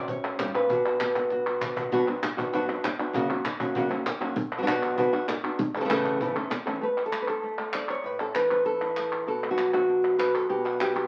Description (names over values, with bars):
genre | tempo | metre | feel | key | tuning
flamenco | 196 BPM | 4/4 | straight | B minor | A4 = 439 Hz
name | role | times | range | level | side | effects
flamenco guitar | melody | 0.0-11.1 s | F#2 to F#5 | -28 LUFS | equal | none
cajon | percussion | 0.1-6.8 s | none | -38 LUFS | equal | none
palmas hand claps | percussion | 0.2-11.1 s | none | -35 LUFS | equal | none
room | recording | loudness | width
moderate club reverb, RT60 0.8 s | very old 78 rpm record, vinyl crackle | -27 LUFS | mono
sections
0.0-1.9 A section; 1.9-6.8 B section; 6.8-11.1 C section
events
drum fill 1.2-1.9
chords
0.0 F#; 0.7 Bm; 3.1 F#; 4.4 Bm; 5.6 A; 6.8 A5; 9.3 Bm7